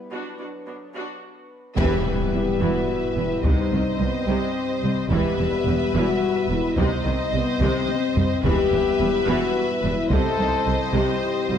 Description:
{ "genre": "cinematic, hybrid orchestral and electronic film score", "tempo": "72 BPM (dotted quarters)", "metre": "6/8", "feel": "straight", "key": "E harmonic minor", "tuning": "A4 = 440 Hz", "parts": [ { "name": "chorused pulse-width pad", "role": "sustained chords", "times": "0.0-11.6 s", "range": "F#3 to E5", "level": "-29 LUFS", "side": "equal", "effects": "none" }, { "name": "rich symphonic viola section", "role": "accompaniment", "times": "0.1-11.6 s", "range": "C3 to F#4", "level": "-31 LUFS", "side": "right 1 dB", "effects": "none" }, { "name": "rich symphonic cello section", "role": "bass", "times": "0.1-11.6 s", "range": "C2 to B2", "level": "-28 LUFS", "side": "right 3 dB", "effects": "none" }, { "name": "rich symphonic violin section", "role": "melody", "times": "1.8-11.6 s", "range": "Eb5 to E5", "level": "-33 LUFS", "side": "left 2 dB", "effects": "none" }, { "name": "rich studio violin section", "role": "second line", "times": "1.8-11.6 s", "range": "B4 to C5", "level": "-30 LUFS", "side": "left 1 dB", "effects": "none" }, { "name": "mellow French horn section", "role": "sustained chords", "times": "1.8-11.6 s", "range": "B3 to A4", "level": "-25 LUFS", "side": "left 6 dB", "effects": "none" }, { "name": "rich symphonic double bass section", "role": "bass", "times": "1.8-11.6 s", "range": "E1 to C2", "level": "-28 LUFS", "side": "right 3 dB", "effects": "none" }, { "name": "taiko ensemble", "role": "drums", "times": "1.8-10.6 s", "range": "none", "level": "-26 LUFS", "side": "equal", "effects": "none" }, { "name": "impact", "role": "sound effects", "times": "1.8-3.4 s", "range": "none", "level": "-30 LUFS", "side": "equal", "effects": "none" } ], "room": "moderate scoring stage reverb, RT60 1.6 s", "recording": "dark, warm production, high-pass filter", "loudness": "-19 LUFS", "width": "side -8 dB against mid", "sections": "0.0-1.8 A section; 1.8-11.6 B section", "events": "build-up 0.0-1.8; filter sweep 0.0-1.8; band accent 1.8-2.3; impact 1.8-3.4; drum fill 7.6-8.4", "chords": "0.1 Bm; 1.8 Em; 3.4 Cm; 5.1 Em; 6.8 Cm; 8.4 Em; 10.1 Cm", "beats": "| 0.11 0.94 | 1.77 2.61 | 3.44 4.28 | 5.11 5.94 | 6.78 7.61 | 8.44 9.28 | 10.11 10.94" }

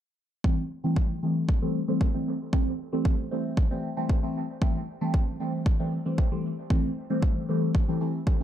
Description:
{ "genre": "dub techno", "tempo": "115 BPM", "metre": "4/4", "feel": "straight", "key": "A minor", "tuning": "A4 = 439 Hz", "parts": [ { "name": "deep mellow chord stab", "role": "stabs", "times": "0.4-8.4 s", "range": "E3 to C4", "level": "-28 LUFS", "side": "equal", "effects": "chorus, phaser, sidechain pumping, dub echo" }, { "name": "electronic kick drum", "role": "drums", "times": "0.4-8.4 s", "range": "none", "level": "-25 LUFS", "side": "equal", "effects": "overdrive" } ], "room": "little or no reverb", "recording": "echo-heavy mix", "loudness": "-25 LUFS", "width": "side -11 dB against mid", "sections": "0.4-8.4 A section", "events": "none", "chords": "0.4 Am7", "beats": "| 0.44 0.96 1.49 2.01 | 2.53 3.05 3.57 4.09 | 4.62 5.14 5.66 6.18 | 6.70 7.22 7.75 8.27" }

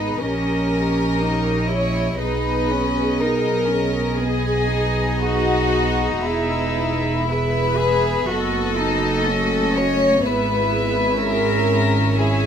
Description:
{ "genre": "classical, slow romantic movement for string orchestra", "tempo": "54-63 BPM", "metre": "4/4", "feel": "rubato", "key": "G# minor", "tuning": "A4 = 441 Hz", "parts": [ { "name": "rich studio violin section", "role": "melody", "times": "0.0-12.5 s", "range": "D#5 to E5", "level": "-28 LUFS", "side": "left 1 dB", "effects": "none" }, { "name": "warm symphonic violin section", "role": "second line", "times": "0.0-12.5 s", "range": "E4 to C#5", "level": "-22 LUFS", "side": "left 2 dB", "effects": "none" }, { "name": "dark symphonic viola section", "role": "accompaniment", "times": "0.0-12.5 s", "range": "G#3 to G#4", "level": "-26 LUFS", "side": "right 2 dB", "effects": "none" }, { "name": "warm studio cello section", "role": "bass", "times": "0.0-12.5 s", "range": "B3 to G#4", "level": "-25 LUFS", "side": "equal", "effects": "none" }, { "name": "warm symphonic double bass section", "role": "bass", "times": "0.0-12.5 s", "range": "E1 to B1", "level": "-24 LUFS", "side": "right 2 dB", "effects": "none" } ], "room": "light reverb", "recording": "close, detailed microphones", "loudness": "-17 LUFS", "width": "side -8 dB against mid", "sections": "0.0-12.5 A section", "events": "none", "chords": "0.2 D#7/A#; 2.2 G#m/B; 6.2 E; 8.3 B7/F#; 10.2 E/G#", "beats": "0.21 1.22 | 2.21 3.19 4.19 5.19 | 6.20 7.28 8.29 9.28 | 10.23 11.19 12.17" }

